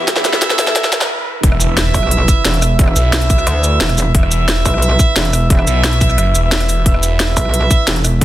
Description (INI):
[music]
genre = dark technical drum and bass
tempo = 177 BPM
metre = 4/4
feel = straight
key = E minor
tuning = A4 = 441 Hz
[part]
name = metallic inharmonic drone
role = sustained chords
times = 0.0-1.1 s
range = E3 to G4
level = -31 LUFS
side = left 1 dB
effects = chorus, built-in reverb, phaser, sidechain pumping
[part]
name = warm brass ensemble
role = stabs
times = 0.0-8.2 s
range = E4 to E5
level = -19 LUFS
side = right 2 dB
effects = dub echo
[part]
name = phased detuned saw bass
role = bass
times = 0.0-7.4 s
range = E1 to D2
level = -16 LUFS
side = equal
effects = phaser, tube saturation, high-pass filter
[part]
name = riser and impact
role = sound effects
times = 0.0-2.8 s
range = none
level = -23 LUFS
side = equal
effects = none
[part]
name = drum and bass drum kit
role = drums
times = 0.1-8.2 s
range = hi-hat, rim click, shaker, snare drum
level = -17 LUFS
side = equal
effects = studio reverb
[part]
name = electronic kick drum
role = drums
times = 0.1-8.2 s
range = none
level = -13 LUFS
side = equal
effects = high-pass filter on kick, studio reverb
[part]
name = metallic wobble bass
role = bass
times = 1.9-8.2 s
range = E1 to D2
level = -15 LUFS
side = equal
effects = chorus
[sound]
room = light reverb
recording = dense, heavily limited modern master, high-pass filter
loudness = -11 LUFS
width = side -14 dB against mid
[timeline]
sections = 0.0-1.4 A section; 1.4-8.2 B section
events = build-up 0.0-1.4; drum fill 0.0-1.1; riser 0.0-1.1; stop 1.1-1.4; drop 1.4-8.2; impact 1.4-2.8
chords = 0.0 Em; 1.4 E5